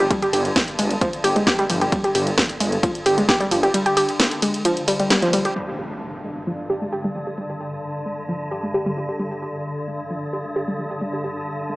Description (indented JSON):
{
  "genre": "driving peak-time techno",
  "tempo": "132 BPM",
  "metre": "4/4",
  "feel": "straight",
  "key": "unclear",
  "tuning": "A4 = 440 Hz",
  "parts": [
    { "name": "warbly dusty pluck", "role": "riff", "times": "0.0-11.8 s", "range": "F3 to G4", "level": "-22 LUFS", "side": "equal", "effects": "chorus, tube saturation, sidechain pumping, dub echo" },
    { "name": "detuned saw bass", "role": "bass", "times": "0.0-3.7 s", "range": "G1", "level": "-25 LUFS", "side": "equal", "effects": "sidechain pumping" },
    { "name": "swarming drone", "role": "drone", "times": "0.0-11.8 s", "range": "G2 to D3", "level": "-29 LUFS", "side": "equal", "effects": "built-in reverb, sidechain pumping" },
    { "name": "techno drum kit", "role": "drums", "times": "0.0-5.5 s", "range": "hi-hat, ride cymbal, snare drum", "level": "-22 LUFS", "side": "equal", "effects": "low-pass filter on snare, low-pass filter on hats, low-pass filter on cymbals, low-pass filter on room" },
    { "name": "electronic kick drum", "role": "drums", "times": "0.1-3.4 s", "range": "none", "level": "-25 LUFS", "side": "equal", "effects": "none" },
    { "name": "impact", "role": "sound effects", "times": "5.6-7.4 s", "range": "none", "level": "-35 LUFS", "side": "equal", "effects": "none" }
  ],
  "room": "moderate digital room reverb, RT60 1.1 s",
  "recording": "small speaker sound",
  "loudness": "-19 LUFS",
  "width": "side -21 dB against mid",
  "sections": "0.0-5.6 A section; 5.6-11.8 B section",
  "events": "drop 0.0-5.6; band accent 5.1; impact 5.6-7.4; filter sweep on synth arpeggio sound 5.6-11.8",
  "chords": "0.0 G5"
}